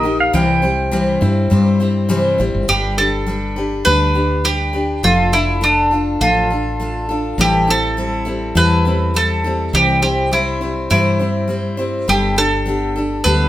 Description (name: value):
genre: acoustic folk duo or small band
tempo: 102 BPM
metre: 4/4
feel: straight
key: G mixolydian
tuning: A4 = 445 Hz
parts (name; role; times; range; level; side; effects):
- pedal steel guitar; second line; 0.0-2.4 s; Eb5 to G5; -19 LUFS; right 2 dB; none
- picked steel-string acoustic guitar; accompaniment; 0.0-13.5 s; A2 to C5; -19 LUFS; left 2 dB; none
- woody fretless electric bass; bass; 0.0-13.5 s; F1 to G2; -19 LUFS; equal; none
- bowl-back mandolin; melody; 2.7-13.5 s; D4 to B4; -17 LUFS; right 1 dB; none
room: moderate large studio reverb, RT60 1.0 s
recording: band playing live in one room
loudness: -14 LUFS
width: side -14 dB against mid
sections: 0.0-2.7 A section; 2.7-13.5 B section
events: pedal steel guitar solo 0.0-2.7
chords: 0.3 C; 2.7 G; 5.0 Dm/F; 7.4 Am7; 9.7 C; 12.1 Gadd9